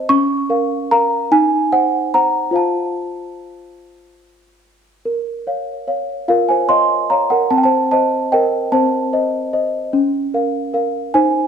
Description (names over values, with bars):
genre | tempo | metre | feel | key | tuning
classical, lullaby for celesta | 49 BPM (dotted quarters) | 6/8 | straight | Bb minor | A4 = 440 Hz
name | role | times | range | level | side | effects
small celesta | solo | 0.0-11.5 s | C4 to Db6 | -14 LUFS | equal | none
room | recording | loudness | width
wet recital hall reverb, RT60 1.4 s | faint mains hum | -14 LUFS | side -7 dB against mid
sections
0.0-5.1 A section; 5.1-11.5 B section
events
none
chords
0.1 Bbm/Db; 1.3 Cdim/Eb; 2.6 F; 5.1 Bbm; 7.5 Adim/C; 9.9 Bbm/Db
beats
| 0.09 1.31 | 2.55 3.81 | 5.06 6.29 | 7.51 8.72 | 9.94 11.15